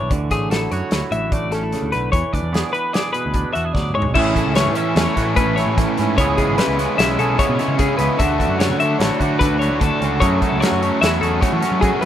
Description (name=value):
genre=math rock and midwest emo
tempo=149 BPM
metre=5/4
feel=straight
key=A major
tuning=A4 = 440 Hz
part: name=twangy electric guitar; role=accompaniment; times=0.0-12.1 s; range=F#2 to B4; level=-25 LUFS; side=right 7 dB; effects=none
part: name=twelve-string electric guitar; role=arpeggios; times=0.0-12.1 s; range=G#4 to E5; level=-22 LUFS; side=left 4 dB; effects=tape echo
part: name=picked electric bass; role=bass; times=0.0-12.1 s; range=G#1 to F#3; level=-23 LUFS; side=equal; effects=none
part: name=loose indie drum kit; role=drums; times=0.1-12.1 s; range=crash cymbal, hi-hat, kick drum, snare drum, toms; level=-22 LUFS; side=equal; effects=none
part: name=crunchy overdriven guitar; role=riff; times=4.1-12.1 s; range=A2 to F#4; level=-20 LUFS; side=equal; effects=none
room=small room ambience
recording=rough home demo mix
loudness=-16 LUFS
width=side -10 dB against mid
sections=0.0-4.2 A section; 4.2-12.1 B section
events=drum fill 3.8-4.2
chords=0.1 Dadd9; 2.1 E7; 4.2 Amaj7; 6.2 C#m7; 8.2 Dmaj9; 10.2 F#m9